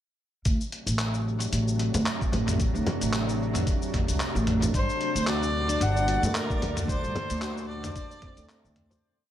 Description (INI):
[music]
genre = organic downtempo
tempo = 112 BPM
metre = 4/4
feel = swing 56% on 16ths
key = unclear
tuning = A4 = 445 Hz
[part]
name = bowed-like drone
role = sustained chords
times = 0.9-9.0 s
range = Bb2 to A4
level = -33 LUFS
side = right 1 dB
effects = built-in reverb, sidechain pumping
[part]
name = upright bass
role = bass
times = 0.5-9.0 s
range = G1 to G2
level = -28 LUFS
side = equal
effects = none
[part]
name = dusty soul sampler-style drum kit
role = drums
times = 0.5-9.0 s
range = handclaps, hi-hat, shaker, toms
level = -32 LUFS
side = equal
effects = dub echo
[part]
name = electronic kick drum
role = drums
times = 0.5-8.3 s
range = none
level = -28 LUFS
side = equal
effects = none
[part]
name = frame drum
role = percussion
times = 1.9-9.0 s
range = none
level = -34 LUFS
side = left 1 dB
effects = dub echo
[part]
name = handpan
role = arpeggios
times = 4.7-9.0 s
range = A3 to D5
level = -34 LUFS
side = left 3 dB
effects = dub echo
[part]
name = twinkling granular texture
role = texture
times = 5.6-9.0 s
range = D5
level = -43 LUFS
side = right 4 dB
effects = built-in reverb
[part]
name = rich kamancheh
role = melody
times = 4.8-8.7 s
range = Bb4 to F#5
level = -30 LUFS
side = left 1 dB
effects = tape echo
[sound]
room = light reverb, small room ambience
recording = echo-heavy mix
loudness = -24 LUFS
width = side -11 dB against mid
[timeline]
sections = 0.5-9.0 groove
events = fade-out 6.2-9.0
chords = 0.5 D7; 4.7 Gm